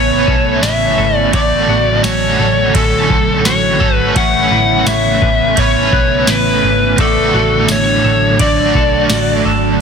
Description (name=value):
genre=dream pop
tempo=85 BPM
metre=4/4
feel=straight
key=unclear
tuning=A4 = 440 Hz
part: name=overdriven slide guitar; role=melody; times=0.0-9.4 s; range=A4 to F#5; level=-14 LUFS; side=left 2 dB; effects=digital delay
part: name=cranked stack guitar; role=accompaniment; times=0.0-9.8 s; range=A2 to B4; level=-18 LUFS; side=right 5 dB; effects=overdrive, tremolo, analog chorus
part: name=ethereal airy pad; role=sustained chords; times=0.0-9.8 s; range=C#3 to D4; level=-19 LUFS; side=right 2 dB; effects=ensemble chorus, built-in reverb
part: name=semi-hollow electric guitar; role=arpeggios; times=0.0-9.8 s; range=A3 to D5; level=-20 LUFS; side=left 2 dB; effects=analog chorus, digital delay
part: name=vintage muted picked electric bass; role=bass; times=0.0-9.8 s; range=G#1 to B1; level=-19 LUFS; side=equal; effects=none
part: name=booming analog drum machine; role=drums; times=0.3-9.3 s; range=kick drum, ride cymbal, snare drum, tambourine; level=-18 LUFS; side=equal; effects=none
room=light reverb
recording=dense, heavily limited modern master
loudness=-10 LUFS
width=side -6 dB against mid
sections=0.0-9.8 A section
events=none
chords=0.0 Aadd9; 1.3 Dmaj7/A; 4.2 Aadd9; 7.0 Dmaj7/A